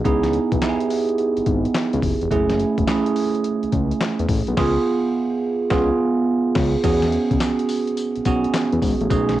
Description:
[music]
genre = R&B, new jack swing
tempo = 106 BPM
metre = 4/4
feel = swing 66% on 16ths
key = unclear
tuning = A4 = 440 Hz
[part]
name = bell-like tine electric piano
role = accompaniment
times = 0.0-9.4 s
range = A3 to G#4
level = -19 LUFS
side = right 3 dB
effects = phaser
[part]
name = fat analog bass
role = bass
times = 0.0-9.4 s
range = E1 to E2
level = -23 LUFS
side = left 2 dB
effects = none
[part]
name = boom bap sampler-style drum kit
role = drums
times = 0.1-9.4 s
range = crash cymbal, handclaps, hi-hat, kick drum, snare drum, tambourine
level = -24 LUFS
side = left 2 dB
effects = cassette tape
[sound]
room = wet studio reverb, RT60 0.6 s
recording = home recording on cassette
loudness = -18 LUFS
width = side -13 dB against mid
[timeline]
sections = 0.0-6.8 A section; 6.8-9.4 B section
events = band accent 4.6-6.8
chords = 0.0 C#m7; 2.3 F#m7; 4.6 C#7; 6.8 E6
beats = | 0.05 0.61 1.18 1.75 | 2.31 2.88 3.44 4.01 | 4.58 5.14 5.71 6.27 | 6.84 7.41 7.97 8.54 | 9.10

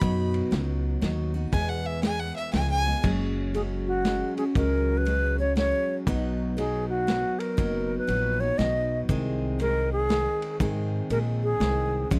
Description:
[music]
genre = honky-tonk and classic country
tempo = 119 BPM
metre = 3/4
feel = swing 64% on 8ths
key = E major, F# major from 3.0 s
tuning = A4 = 440 Hz
[part]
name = clear fiddle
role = second line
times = 0.0-3.0 s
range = E5 to B5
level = -33 LUFS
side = equal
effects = none
[part]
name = picked steel-string acoustic guitar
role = accompaniment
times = 0.0-12.2 s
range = E2 to G#4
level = -33 LUFS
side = equal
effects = none
[part]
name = upright bass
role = bass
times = 0.0-12.2 s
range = F#1 to G#2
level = -31 LUFS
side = equal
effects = none
[part]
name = vintage drum kit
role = drums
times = 0.0-12.2 s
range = crash cymbal, kick drum, ride cymbal, snare drum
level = -31 LUFS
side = equal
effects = none
[part]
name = bright alto flute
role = melody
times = 3.5-12.1 s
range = F#4 to D#5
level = -29 LUFS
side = equal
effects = none
[sound]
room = little or no reverb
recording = dry, close 1970s-style studio recording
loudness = -26 LUFS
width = mono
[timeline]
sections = 0.0-3.0 A section; 3.0-12.2 B section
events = fiddle solo 0.0-3.0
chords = 0.0 B; 1.5 E; 2.5 C#7; 3.0 F#sus2; 6.1 B; 9.1 G#/B#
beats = | 0.01 0.52 1.02 | 1.53 2.03 2.54 | 3.04 3.55 4.05 | 4.56 5.06 5.57 | 6.07 6.57 7.08 | 7.58 8.09 8.59 | 9.09 9.60 10.10 | 10.61 11.11 11.61 | 12.12

